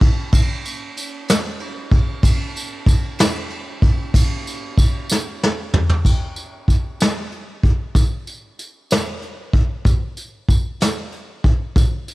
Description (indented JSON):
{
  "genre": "gospel",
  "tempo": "63 BPM (dotted quarters)",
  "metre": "6/8",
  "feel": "straight",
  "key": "none",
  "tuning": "none",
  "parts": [
    { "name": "soft brush drum kit", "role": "drums", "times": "0.0-12.1 s", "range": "crash cymbal, hi-hat, kick drum, ride cymbal, snare drum, toms", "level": "-16 LUFS", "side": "equal", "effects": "cassette tape" },
    { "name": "tambourine", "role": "percussion", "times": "0.3-12.1 s", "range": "none", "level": "-29 LUFS", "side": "right 1 dB", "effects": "none" }
  ],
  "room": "studio reverb",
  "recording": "home recording on cassette",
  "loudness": "-17 LUFS",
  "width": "side -19 dB against mid",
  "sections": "0.0-6.0 A section; 6.0-12.1 B section",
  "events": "drum fill 5.1-6.0",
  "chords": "none"
}